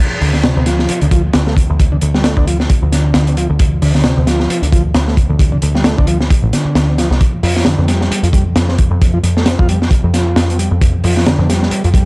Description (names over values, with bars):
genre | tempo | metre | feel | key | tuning
breakbeat, breaks | 133 BPM | 4/4 | swing 56% on 16ths | D minor pentatonic | A4 = 440 Hz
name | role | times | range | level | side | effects
overdriven combo organ | riff | 0.2-12.0 s | C3 to F4 | -18 LUFS | equal | tube saturation
overdriven picked electric bass | bass | 0.2-12.1 s | A1 to F2 | -14 LUFS | equal | none
crunchy breakbeat drum kit | drums | 0.2-12.1 s | hi-hat, kick drum, snare drum | -13 LUFS | equal | none
room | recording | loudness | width
small room ambience | dry, gritty hardware recording, cassette tape | -10 LUFS | side -28 dB against mid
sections
0.0-12.1 A section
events
none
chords
0.0 Dm; 7.2 N.C.